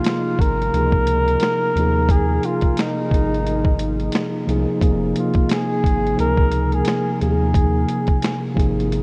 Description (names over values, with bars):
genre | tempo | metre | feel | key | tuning
lo-fi hip hop | 88 BPM | 4/4 | swing 59% on 16ths | unclear | A4 = 440 Hz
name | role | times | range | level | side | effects
breathy flugelhorn | melody | 0.0-8.5 s | Eb4 to Bb4 | -25 LUFS | equal | none
mellow tine electric piano | accompaniment | 0.0-9.0 s | C3 to Ab4 | -24 LUFS | equal | cassette tape
boom bap sampler-style drum kit | drums | 0.0-9.0 s | finger snaps, hi-hat, kick drum, snare drum | -24 LUFS | equal | vintage 12-bit sampler grit
warm sub bass | bass | 0.4-9.0 s | F1 to Eb2 | -25 LUFS | equal | none
room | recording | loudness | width
moderate huge ambient reverb, RT60 8.6 s | dreamy mix soaked in reverb, cassette tape | -19 LUFS | mono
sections
0.0-9.0 A section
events
none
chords
0.0 Fm7; 0.7 Dbmaj9; 1.7 Ebsus24; 3.1 Ab; 4.8 Fm7; 6.2 Dbmaj9; 7.2 Ebsus24